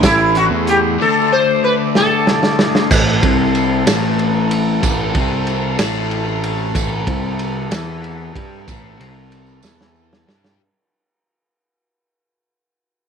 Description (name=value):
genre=psychedelic rock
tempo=62 BPM (dotted quarters)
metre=6/8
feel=straight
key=A minor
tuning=A4 = 440 Hz
part: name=sitar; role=melody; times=0.0-2.6 s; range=E4 to C5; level=-15 LUFS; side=left 1 dB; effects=slapback echo
part: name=combo organ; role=sustained chords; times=0.0-10.6 s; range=C4 to D6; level=-24 LUFS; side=right 12 dB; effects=none
part: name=fuzz guitar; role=riff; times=0.0-10.6 s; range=A2 to G4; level=-21 LUFS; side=left 12 dB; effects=distortion, phaser
part: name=fuzz picked electric bass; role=bass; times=0.0-10.6 s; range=A1 to G2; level=-20 LUFS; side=right 1 dB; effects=overdrive
part: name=crunchy breakbeat drum kit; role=drums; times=0.0-10.6 s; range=crash cymbal, hi-hat, kick drum, ride cymbal, snare drum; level=-18 LUFS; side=right 1 dB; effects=none
part: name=tambourine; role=percussion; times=0.0-10.0 s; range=none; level=-30 LUFS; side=right 18 dB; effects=none
room=moderate spring reverb, RT60 2.3 s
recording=1960s-style stereo with parts hard left and right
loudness=-13 LUFS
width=side -7 dB against mid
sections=0.0-2.9 A section; 2.9-10.6 B section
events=drum fill 1.9-2.9, 9.6-10.6; fade-out 2.9-10.6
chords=0.0 Amadd9; 1.0 Dsus2; 2.9 Am